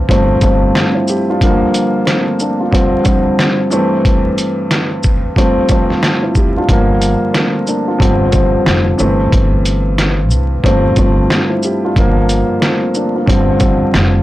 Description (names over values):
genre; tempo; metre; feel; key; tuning
hip hop, boom-bap hip-hop; 91 BPM; 4/4; swing 62% on 16ths; G dorian; A4 = 444 Hz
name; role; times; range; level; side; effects
dark grand piano; accompaniment; 0.0-14.2 s; G2 to G4; -13 LUFS; equal; high-pass filter, low-pass filter
upright bass; bass; 0.0-0.7, 6.7-14.2 s; F1 to C2; -16 LUFS; equal; transformer saturation
trip hop sampler-style drum kit; drums; 0.1-14.1 s; hi-hat, kick drum, shaker, snare drum; -14 LUFS; equal; overdrive
room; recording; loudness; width
light reverb; blown-out, overdriven recording, vinyl crackle, overdrive; -11 LUFS; side -16 dB against mid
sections
0.0-14.2 A section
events
none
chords
0.1 Fadd9/G; 1.4 Gm7; 2.7 Dm7/G; 3.7 C6/G; 5.4 Fadd9/G; 6.7 Gm7; 8.0 Dm7/G; 9.0 C6/G; 10.6 Fadd9/G; 12.0 Gm7; 13.3 Dm7/G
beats
0.09 0.75 | 1.41 2.07 2.73 3.39 | 4.05 4.71 5.37 6.03 | 6.69 7.35 8.01 8.67 | 9.32 9.98 10.64 11.30 | 11.96 12.62 13.28 13.94